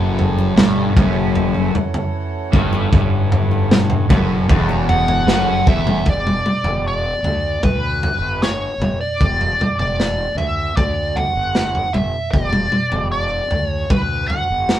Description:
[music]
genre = psychedelic rock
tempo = 76 BPM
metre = 4/4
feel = straight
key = E dorian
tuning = A4 = 440 Hz
[part]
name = hand-pumped harmonium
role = sustained chords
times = 0.0-6.0 s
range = E3 to F#4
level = -27 LUFS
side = right 4 dB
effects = none
[part]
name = fuzz guitar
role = riff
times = 0.0-6.0 s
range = E2 to G2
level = -18 LUFS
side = left 2 dB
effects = distortion, phaser
[part]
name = fuzz fingered electric bass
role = bass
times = 0.0-14.8 s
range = E1 to D2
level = -24 LUFS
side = equal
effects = overdrive
[part]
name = crunchy breakbeat drum kit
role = drums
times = 0.2-14.8 s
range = kick drum, snare drum, toms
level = -18 LUFS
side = equal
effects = none
[part]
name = congas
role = percussion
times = 0.4-6.0 s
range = none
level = -30 LUFS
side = left 2 dB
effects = none
[part]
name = biting lead guitar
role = melody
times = 4.9-14.8 s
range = B4 to F#5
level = -20 LUFS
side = right 1 dB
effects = wah, overdrive
[sound]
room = light reverb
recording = band playing live in one room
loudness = -15 LUFS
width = side -11 dB against mid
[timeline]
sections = 0.0-6.1 A section; 6.1-14.8 B section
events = drum fill 5.5-6.1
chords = 0.0 F#m7; 6.1 Em7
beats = 0.57 1.35 2.13 | 2.92 3.70 4.49 5.27 | 6.06 6.84 7.63 8.41 | 9.20 9.98 10.77 11.55 | 12.34 13.12 13.91 14.69

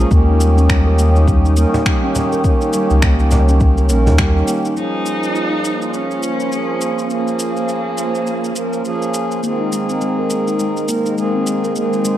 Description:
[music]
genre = organic downtempo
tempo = 103 BPM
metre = 4/4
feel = swing 60% on 16ths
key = Bb dorian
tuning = A4 = 436 Hz
[part]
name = pedal harmonium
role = accompaniment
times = 0.0-12.2 s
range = Eb3 to Bb4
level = -20 LUFS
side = right 2 dB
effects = sidechain pumping, tape echo
[part]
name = warm analog pad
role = sustained chords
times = 0.0-12.2 s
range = Ab3 to Eb6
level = -24 LUFS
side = equal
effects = chorus, sidechain pumping
[part]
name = steel tongue drum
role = arpeggios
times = 0.0-4.7, 9.4-12.2 s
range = G3 to Bb4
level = -21 LUFS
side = equal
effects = tape echo
[part]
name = warm sub bass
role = bass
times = 0.0-4.4 s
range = Bb1 to Eb2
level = -13 LUFS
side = equal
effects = sidechain pumping
[part]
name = electronic kick drum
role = drums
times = 0.1-4.3 s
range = none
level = -16 LUFS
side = equal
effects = none
[part]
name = electronic shaker and finger snaps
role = drums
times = 0.1-12.2 s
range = none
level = -26 LUFS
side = equal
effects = none
[part]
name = cajon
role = percussion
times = 0.4-4.5 s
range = none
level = -23 LUFS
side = right 1 dB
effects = none
[part]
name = rich cello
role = melody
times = 4.8-9.1 s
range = Bb3 to Eb4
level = -23 LUFS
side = equal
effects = tape echo
[sound]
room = light reverb, studio ambience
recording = dark, warm production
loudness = -14 LUFS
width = side -12 dB against mid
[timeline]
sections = 0.0-4.8 A section; 4.8-12.2 B section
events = none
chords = 0.1 Eb7; 4.8 Bbm7; 9.4 Abadd9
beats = | 0.11 0.70 1.28 1.86 | 2.44 3.03 3.61 4.19 | 4.77 5.36 5.94 6.52 | 7.10 7.69 8.27 8.85 | 9.43 10.02 10.60 11.18 | 11.76

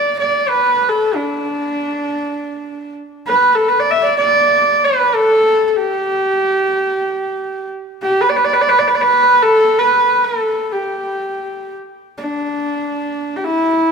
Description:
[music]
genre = mongolian traditional, Mongolian folk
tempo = free time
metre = none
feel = none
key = D zhi mode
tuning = A4 = 435 Hz
[part]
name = rich horsehead fiddle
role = solo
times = 0.0-13.9 s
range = D4 to E5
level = -13 LUFS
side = right 1 dB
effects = tape echo
[sound]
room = moderate concert hall reverb, RT60 2.3 s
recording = close, detailed microphones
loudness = -13 LUFS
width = side -5 dB against mid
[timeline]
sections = 0.0-3.1 A section; 3.1-13.9 A section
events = none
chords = none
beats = free time

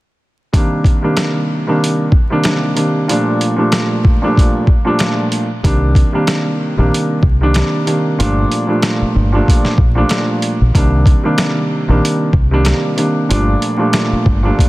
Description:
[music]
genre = hip hop, boom-bap hip-hop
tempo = 94 BPM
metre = 4/4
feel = swing 56% on 16ths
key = C dorian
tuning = A4 = 439 Hz
[part]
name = dark grand piano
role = accompaniment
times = 0.5-14.7 s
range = Bb2 to D4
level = -15 LUFS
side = equal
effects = high-pass filter, low-pass filter
[part]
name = boom bap sampler-style drum kit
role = drums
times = 0.5-14.7 s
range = hi-hat, kick drum, snare drum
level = -15 LUFS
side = equal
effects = none
[part]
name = deep dub fingered electric bass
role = bass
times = 5.6-14.5 s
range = G1 to C2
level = -14 LUFS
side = equal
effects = none
[sound]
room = digital ambience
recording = dense, heavily limited modern master, vinyl crackle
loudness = -12 LUFS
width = side -19 dB against mid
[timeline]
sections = 0.5-10.7 A section; 10.7-14.7 B section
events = none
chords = 0.5 Cm7; 3.1 Gm7; 5.6 Cm7; 8.2 Gm7; 10.7 Cm7; 13.3 Gm7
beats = | 0.53 1.17 1.81 2.45 | 3.09 3.73 4.36 5.00 | 5.64 6.28 6.92 7.55 | 8.19 8.83 9.47 10.11 | 10.75 11.38 12.02 12.66 | 13.30 13.94 14.58

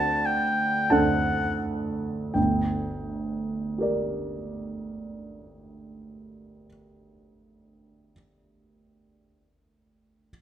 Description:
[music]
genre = classical, romantic duo for oboe and grand piano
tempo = 42 BPM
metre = 4/4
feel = rubato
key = G minor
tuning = A4 = 440 Hz
[part]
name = warm oboe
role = melody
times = 0.0-1.6 s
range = F#5 to A5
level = -25 LUFS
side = left 2 dB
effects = none
[part]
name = dark grand piano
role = accompaniment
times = 0.0-10.3 s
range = G1 to A5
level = -26 LUFS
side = right 2 dB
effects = none
[sound]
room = wet stone room reverb, RT60 1.2 s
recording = none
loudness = -24 LUFS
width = side -10 dB against mid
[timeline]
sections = 0.0-2.4 A section; 2.4-8.1 B section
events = slowing down 0.0-2.4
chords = 0.0 D7; 2.4 Gm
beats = 0.92 | 2.36 3.80 5.25 6.68

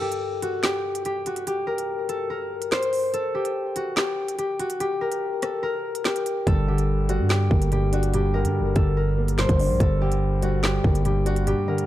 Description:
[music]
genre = hip hop, drill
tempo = 144 BPM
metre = 4/4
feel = half-time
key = G harmonic minor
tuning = A4 = 440 Hz
[part]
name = concert harp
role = melody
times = 0.0-11.9 s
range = F#4 to C5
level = -25 LUFS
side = left 1 dB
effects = ping-pong delay
[part]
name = drill drum kit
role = drums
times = 0.1-11.9 s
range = handclaps, hi-hat, kick drum, rim click, snare drum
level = -25 LUFS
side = equal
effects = none
[part]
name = dark grand piano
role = accompaniment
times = 6.5-11.9 s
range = G2 to D4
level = -28 LUFS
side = equal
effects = none
[part]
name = growling 808-style bass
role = bass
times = 6.5-11.5 s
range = G1 to G2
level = -23 LUFS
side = equal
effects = none
[sound]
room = little or no reverb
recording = dark, warm production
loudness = -21 LUFS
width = side -14 dB against mid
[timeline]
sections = 0.0-11.9 A section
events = break 0.0-6.5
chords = 0.0 N.C.; 6.5 Gm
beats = 0.22 0.64 1.05 | 1.47 1.89 2.30 2.72 | 3.13 3.55 3.97 4.38 | 4.80 5.22 5.63 6.05 | 6.47 6.88 7.30 7.72 | 8.13 8.55 8.97 9.38 | 9.80 10.22 10.63 11.05 | 11.47

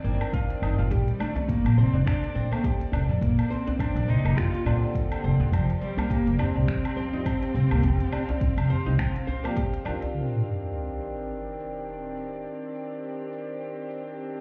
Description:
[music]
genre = organic downtempo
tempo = 104 BPM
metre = 4/4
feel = swing 57% on 16ths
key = C dorian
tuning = A4 = 445 Hz
[part]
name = pedal harmonium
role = accompaniment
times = 0.0-14.4 s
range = D3 to A4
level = -38 LUFS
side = equal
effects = sidechain pumping, digital delay
[part]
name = bowed-like drone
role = sustained chords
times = 0.0-14.4 s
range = Eb3 to F5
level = -40 LUFS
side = equal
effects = built-in reverb, sidechain pumping
[part]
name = oud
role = arpeggios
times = 0.0-9.9 s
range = Bb3 to C5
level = -38 LUFS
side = equal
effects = vintage 12-bit sampler grit, digital delay
[part]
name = upright bass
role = bass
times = 0.0-10.0 s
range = F1 to Bb2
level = -26 LUFS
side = equal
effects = sidechain pumping
[part]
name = organic electronic drum kit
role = drums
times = 0.0-14.4 s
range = finger snaps, hi-hat, shaker, woodblock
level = -40 LUFS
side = equal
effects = overdrive, low-pass filter on perc, low-pass filter on hats, low-pass filter on snare, low-pass filter on room
[part]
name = electronic kick drum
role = drums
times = 0.3-9.7 s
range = none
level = -29 LUFS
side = equal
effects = none
[part]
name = dark cello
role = melody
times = 0.9-9.5 s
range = F3 to F4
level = -33 LUFS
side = equal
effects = digital delay
[part]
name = djembe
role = percussion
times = 0.9-10.1 s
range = none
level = -37 LUFS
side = equal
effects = none
[part]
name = sub drop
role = sound effects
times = 10.1-12.4 s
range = none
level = -34 LUFS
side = equal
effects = none
[sound]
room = light reverb, studio reverb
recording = heard muffled through a wall, club reverb, EQ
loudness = -26 LUFS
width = mono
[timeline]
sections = 0.0-10.1 A section; 10.1-14.4 B section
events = impact 10.1-12.4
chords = 0.0 Cmadd9; 0.9 Bbmaj7; 5.5 Fsus2; 10.1 Cmadd9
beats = 0.34 | 0.91 1.49 2.07 2.64 | 3.22 3.80 4.37 4.95 | 5.53 6.10 6.68 7.26 | 7.83 8.41 8.99 9.57 | 10.14 10.72 11.30 11.87 | 12.45 13.03 13.60 14.18

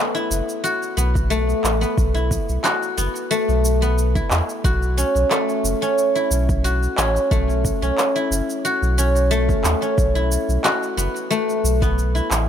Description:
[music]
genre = organic downtempo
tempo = 90 BPM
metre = 4/4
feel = swing 53% on 16ths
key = unclear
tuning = A4 = 440 Hz
[part]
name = guzheng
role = arpeggios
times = 0.0-12.5 s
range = A3 to F#4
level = -20 LUFS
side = left 1 dB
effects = tape echo
[part]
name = electronic cabasa and handclaps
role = drums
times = 0.2-12.5 s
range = none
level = -25 LUFS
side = equal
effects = overdrive
[part]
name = warm sub bass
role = bass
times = 0.3-12.5 s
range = F#1 to E2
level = -20 LUFS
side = equal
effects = none
[part]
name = electronic kick drum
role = drums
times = 1.2-11.9 s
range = none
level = -22 LUFS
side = equal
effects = overdrive
[sound]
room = light reverb, digital ambience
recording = none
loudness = -17 LUFS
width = side -9 dB against mid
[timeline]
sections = 0.0-12.5 A section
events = none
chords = 0.0 B7sus4; 4.6 A6; 10.0 B7sus4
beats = 0.64 1.31 | 1.97 2.64 3.31 3.97 | 4.64 5.31 5.97 6.64 | 7.31 7.97 8.64 9.31 | 9.97 10.64 11.31 11.97

